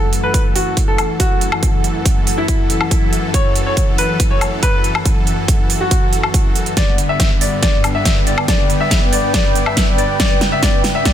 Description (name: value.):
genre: heavy wobble dubstep.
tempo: 140 BPM.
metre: 4/4.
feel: half-time.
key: F# phrygian.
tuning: A4 = 438 Hz.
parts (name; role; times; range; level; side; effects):
clear baby grand piano; melody; 0.0-11.1 s; E4 to E5; -21 LUFS; left 2 dB; dub echo.
supersaw chords; sustained chords; 0.0-11.1 s; F#2 to A4; -22 LUFS; equal; sidechain pumping.
deep dark ambient pad; texture; 0.0-11.1 s; E4 to G5; -24 LUFS; equal; chorus, built-in reverb, sidechain pumping.
big-room dance drum kit; drums; 0.1-11.1 s; hi-hat, snare drum, woodblock; -20 LUFS; equal; studio reverb.
electronic kick drum; drums; 0.3-11.1 s; none; -16 LUFS; equal; studio reverb.
room: light reverb, digital ambience.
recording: dense, heavily limited modern master.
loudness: -13 LUFS.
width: side -10 dB against mid.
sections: 0.0-11.1 A section.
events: build-up 0.0-11.1; drum fill 6.8-11.1.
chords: 0.0 F#m7; 6.8 G.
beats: 0.34 0.77 1.20 | 1.63 2.06 2.48 2.91 | 3.34 3.77 4.20 4.63 | 5.06 5.48 5.91 6.34 | 6.77 7.20 7.63 8.06 | 8.48 8.91 9.34 9.77 | 10.20 10.63 11.06.